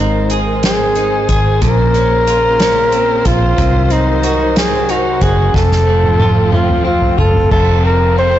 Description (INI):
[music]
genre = six-eight pop ballad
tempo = 61 BPM (dotted quarters)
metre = 6/8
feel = straight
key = unclear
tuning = A4 = 440 Hz
[part]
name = warm flugelhorn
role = melody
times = 0.0-8.4 s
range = Eb4 to C5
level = -14 LUFS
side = equal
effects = ping-pong delay
[part]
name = direct-recorded clean electric guitar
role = accompaniment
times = 0.0-8.4 s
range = F2 to Ab4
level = -19 LUFS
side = equal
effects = double-tracked left and right
[part]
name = warm studio string section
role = sustained chords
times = 0.0-8.4 s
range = Db3 to C5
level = -21 LUFS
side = left 1 dB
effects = none
[part]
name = vintage muted fingered electric bass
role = bass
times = 0.0-8.4 s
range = F1 to C2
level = -16 LUFS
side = equal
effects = none
[part]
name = soft-mallet drum kit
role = drums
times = 0.3-8.3 s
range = crash cymbal, hi-hat, kick drum, ride cymbal, snare drum, toms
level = -18 LUFS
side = equal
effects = none
[sound]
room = light reverb, small room ambience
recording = blown-out, overdriven recording, overdrive, nothing above 7.8 kHz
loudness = -10 LUFS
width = side -12 dB against mid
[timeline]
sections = 0.0-7.5 A section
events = drum fill 5.5-7.5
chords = 0.0 Ab; 1.6 Bbmadd9; 3.6 Cdim; 5.5 F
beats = 0.64 | 1.62 2.61 | 3.59 4.56 | 5.54 6.53 | 7.51